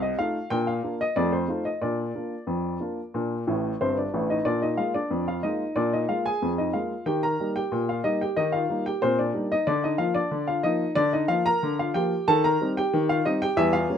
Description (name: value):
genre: ragtime piano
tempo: 92 BPM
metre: 2/4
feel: straight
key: Bb major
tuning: A4 = 440 Hz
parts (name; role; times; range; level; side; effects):
- warm upright piano; solo; 0.0-14.0 s; G1 to Bb5; -23 LUFS; left 1 dB; none
room: light reverb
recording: none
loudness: -23 LUFS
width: side -8 dB against mid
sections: 0.0-4.5 A section; 4.5-14.0 A section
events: upright piano fill 3.5-4.5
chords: 0.5 Bb; 1.2 F7; 1.8 Bb; 4.5 Bb7; 7.1 Eb; 9.7 Bb/D; 12.3 Cm/Eb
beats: | 0.50 1.15 | 1.81 2.48 | 3.13 3.79 | 4.45 5.11 | 5.76 6.41 | 7.06 7.71 | 8.36 9.02 | 9.66 10.32 | 10.96 11.61 | 12.26 12.91 | 13.56